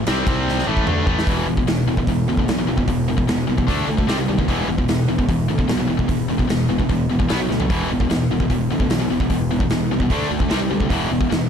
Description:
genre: heavy metal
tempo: 149 BPM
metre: 4/4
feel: straight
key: E minor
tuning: A4 = 439 Hz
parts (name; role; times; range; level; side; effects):
- high-gain distorted guitar; riff; 0.0-11.5 s; E2 to D4; -23 LUFS; right 11 dB; distortion
- tight distorted guitar; riff; 0.0-11.5 s; E2 to D4; -23 LUFS; left 10 dB; distortion
- fuzz fingered electric bass; bass; 0.0-11.5 s; E1 to D#2; -25 LUFS; equal; overdrive
- big rock drum kit; drums; 0.1-11.4 s; hi-hat, kick drum, ride cymbal, snare drum, toms; -22 LUFS; equal; none
room: little or no reverb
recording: dark, warm production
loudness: -17 LUFS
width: side -8 dB against mid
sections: 0.0-1.3 A section; 1.3-11.5 B section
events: drum fill 0.5-1.3, 7.5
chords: 0.3 C5; 0.7 A5; 1.3 E5; 3.7 D5; 4.1 C5; 4.5 E5; 7.3 B5; 7.7 E5; 10.1 D5; 10.5 C5; 10.9 E5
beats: 0.07 0.47 0.87 | 1.27 1.67 2.07 2.48 | 2.88 3.28 3.68 4.08 | 4.49 4.89 5.29 5.69 | 6.09 6.50 6.90 7.30 | 7.70 8.10 8.50 8.90 | 9.30 9.71 10.11 10.51 | 10.91 11.31

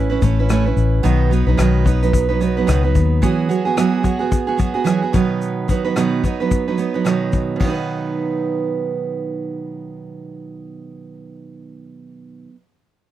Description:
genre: acoustic pop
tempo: 110 BPM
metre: 4/4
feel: swing 60% on 16ths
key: B mixolydian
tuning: A4 = 440 Hz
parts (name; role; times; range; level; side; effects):
- picked steel-string acoustic guitar; accompaniment; 0.0-12.6 s; B2 to B4; -19 LUFS; right 5 dB; none
- vintage muted fingered electric bass; bass; 0.0-3.2 s; A1 to D#2; -16 LUFS; left 2 dB; none
- vintage brush drum kit; drums; 0.2-7.8 s; crash cymbal, kick drum, rim click, shaker; -21 LUFS; left 2 dB; none
room: little or no reverb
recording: dry, close 1970s-style studio recording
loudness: -16 LUFS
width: side -12 dB against mid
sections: 0.0-7.6 A section; 7.6-12.0 B section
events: none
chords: 0.0 Aadd9; 1.0 B; 3.2 Eadd9; 5.1 B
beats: 0.48 | 1.03 1.58 2.12 2.67 | 3.22 3.77 4.31 4.86 | 5.41 5.96 6.50 7.05 | 7.60 8.15 8.70 9.24 | 9.79 10.34 10.89 11.44

